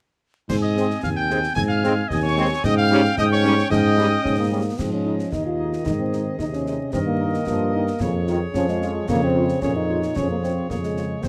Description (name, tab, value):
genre	military-style march for wind band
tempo	112 BPM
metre	2/4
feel	straight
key	Ab major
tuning	A4 = 442 Hz
part	clear cornet	melody	0.5-11.1 s	C5 to Ab5	-29 LUFS	equal	none
part	clear woodwind section	second line	0.5-11.3 s	C4 to Ab5	-32 LUFS	equal	none
part	wooden piccolo	second line	0.5-4.8 s	C6 to Ab6	-29 LUFS	equal	none
part	warm tuba	bass	0.5-11.3 s	Eb2 to Ab2	-25 LUFS	equal	none
part	concert snare drum, clash cymbals and concert bass drum	drums	0.5-11.3 s	none	-33 LUFS	equal	none
part	mellow French horn section	accompaniment	0.8-11.1 s	Ab3 to Ab4	-30 LUFS	equal	none
part	warm trombone section	sustained chords	0.8-11.3 s	Bb2 to Db4	-30 LUFS	equal	none
part	warm euphonium	second line	4.2-11.3 s	Ab3 to F4	-27 LUFS	equal	none
room	little or no reverb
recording	close, detailed microphones, vinyl crackle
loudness	-21 LUFS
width	mono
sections	0.5-4.8 A section; 4.8-11.3 B section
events	none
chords	0.5 Ab; 2.6 Eb7/Ab; 4.8 Ab; 6.9 Eb/G; 8.0 Db/F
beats	| 0.50 1.03 | 1.57 2.10 | 2.64 3.17 | 3.71 4.25 | 4.78 5.32 | 5.86 6.39 | 6.93 7.47 | 8.01 8.54 | 9.08 9.62 | 10.15 10.69 | 11.23